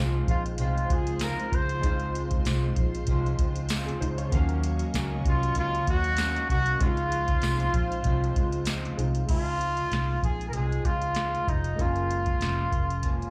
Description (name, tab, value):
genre	indie pop, bedroom pop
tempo	96 BPM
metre	4/4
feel	swing 55% on 16ths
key	Db major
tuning	A4 = 440 Hz
part	electric guitar through a small old amp	accompaniment	0.0-13.3 s	Db3 to Gb4	-40 LUFS	equal	subtle chorus, warbly pitch drift, slapback echo
part	warm analog keys	accompaniment	0.0-13.3 s	F3 to F5	-40 LUFS	equal	chorus, slapback echo
part	string machine, cellos	sustained chords	0.0-9.3 s	Gb3 to Db6	-41 LUFS	equal	ensemble chorus
part	vintage muted fingered electric bass	bass	0.0-13.2 s	F1 to Eb2	-31 LUFS	equal	none
part	mellow trumpet	melody	0.3-13.3 s	Eb4 to C5	-32 LUFS	equal	subtle chorus, plate reverb, slapback echo, analog delay
part	soft vintage rhythm box	drums	0.3-13.3 s	crash cymbal, hi-hat, kick drum, snare drum	-32 LUFS	equal	overdrive
part	tambourine	percussion	1.2-8.8 s	none	-43 LUFS	equal	none
room	little or no reverb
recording	live gig heard through the venue's PA, club reverb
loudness	-27 LUFS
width	mono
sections	0.0-9.3 A section; 9.3-13.3 B section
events	none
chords	0.0 Dbmaj7; 4.3 Ebm7; 6.8 Dbmaj7; 11.8 Ab9sus4